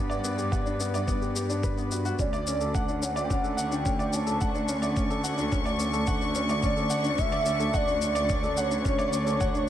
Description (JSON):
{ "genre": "piano and strings electronica", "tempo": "108 BPM", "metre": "4/4", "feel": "straight", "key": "D major", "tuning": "A4 = 440 Hz", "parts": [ { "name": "dark chamber string section", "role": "sustained chords", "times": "0.0-9.7 s", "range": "D3 to C#6", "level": "-35 LUFS", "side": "left 2 dB", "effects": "none" }, { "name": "clear upright piano", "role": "riff", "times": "0.0-9.7 s", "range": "B3 to F#5", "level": "-30 LUFS", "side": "equal", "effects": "low-pass filter, digital delay" }, { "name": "rich symphonic cello section", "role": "bass", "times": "0.0-9.7 s", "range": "D2 to G2", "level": "-31 LUFS", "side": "equal", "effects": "sidechain pumping" }, { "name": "shaker", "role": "drums", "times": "0.1-9.7 s", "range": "none", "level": "-38 LUFS", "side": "left 5 dB", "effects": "none" }, { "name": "electronic kick drum", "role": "drums", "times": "0.5-9.5 s", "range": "none", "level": "-30 LUFS", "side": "equal", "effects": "none" }, { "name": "warm velvety synth lead", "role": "melody", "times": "2.2-9.7 s", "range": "C#5 to A5", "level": "-30 LUFS", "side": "right 1 dB", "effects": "chorus, digital delay" } ], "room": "light reverb, small room ambience", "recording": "none", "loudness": "-24 LUFS", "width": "side -11 dB against mid", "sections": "0.0-9.7 A section", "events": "fade-in on string section 0.0-9.7; filter sweep on upright piano 0.0-9.7", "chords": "0.0 Gmaj7; 2.2 Dmaj7" }